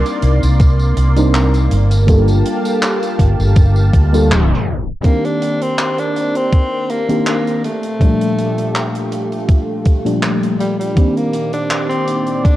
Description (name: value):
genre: vaporwave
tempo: 81 BPM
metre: 4/4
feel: swing 54% on 16ths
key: unclear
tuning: A4 = 440 Hz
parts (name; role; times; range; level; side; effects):
- mellow FM electric piano; accompaniment; 0.0-12.6 s; Bb2 to Bb4; -19 LUFS; equal; analog chorus, analog delay
- lush unison pad; sustained chords; 0.0-12.6 s; Bb2 to C6; -24 LUFS; right 1 dB; chorus, phaser
- tight metal drum kit; drums; 0.1-12.6 s; handclaps, hi-hat, tambourine; -25 LUFS; equal; none
- fretless electric bass; bass; 0.2-4.5 s; F1 to D2; -12 LUFS; equal; wide subtle chorus
- electronic kick drum; drums; 0.6-12.6 s; none; -11 LUFS; equal; none
- breathy tenor saxophone; melody; 4.7-12.6 s; G3 to D4; -20 LUFS; equal; vintage 12-bit sampler grit, tape echo
room: light reverb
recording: dark, warm production, cassette tape, tape stop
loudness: -12 LUFS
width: side -15 dB against mid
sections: 0.0-5.0 A section; 5.0-12.6 B section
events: band accent 4.3-4.7; tape stop 4.3-5.0; filter sweep on analog synth pad 5.0-12.6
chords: 0.0 Cm9; 1.7 Gm9; 5.0 Cm9; 7.6 Gm9; 11.0 Cm9